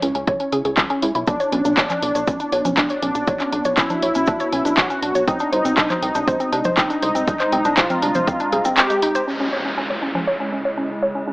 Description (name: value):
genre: melodic techno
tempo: 120 BPM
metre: 4/4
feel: straight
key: unclear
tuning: A4 = 440 Hz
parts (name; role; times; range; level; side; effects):
- woody wave-folded pluck; arpeggios; 0.0-11.3 s; G#3 to C#5; -21 LUFS; equal; chorus, sidechain pumping, dub echo
- plucky analog bass; bass; 0.0-8.7 s; F#1 to C#2; -28 LUFS; equal; sidechain pumping
- house drum kit; drums; 0.0-10.2 s; congas, handclaps, hi-hat; -21 LUFS; equal; overdrive
- ethereal airy pad; texture; 0.0-11.3 s; G#3 to A#5; -30 LUFS; equal; ensemble chorus, built-in reverb, phaser, sidechain pumping
- electronic kick drum; drums; 0.3-8.4 s; none; -21 LUFS; equal; overdrive
- wide unison lead; melody; 1.3-9.2 s; D4 to G4; -23 LUFS; equal; analog chorus, sidechain pumping, dub echo
- cabasa; percussion; 1.3-9.3 s; none; -39 LUFS; equal; none
- swarming drone; drone; 9.9-11.3 s; C#3 to G#3; -34 LUFS; equal; built-in reverb, sidechain pumping
- downlifter; sound effects; 9.3-11.3 s; none; -27 LUFS; equal; none
room: moderate digital room reverb, RT60 1.0 s, digital ambience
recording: AM radio sound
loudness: -17 LUFS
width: side -22 dB against mid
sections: 0.0-9.3 A section; 9.3-11.3 B section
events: filter sweep on synth pluck 0.0-9.3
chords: 0.0 C#m; 1.3 Bmadd9; 5.3 G#; 9.3 C#m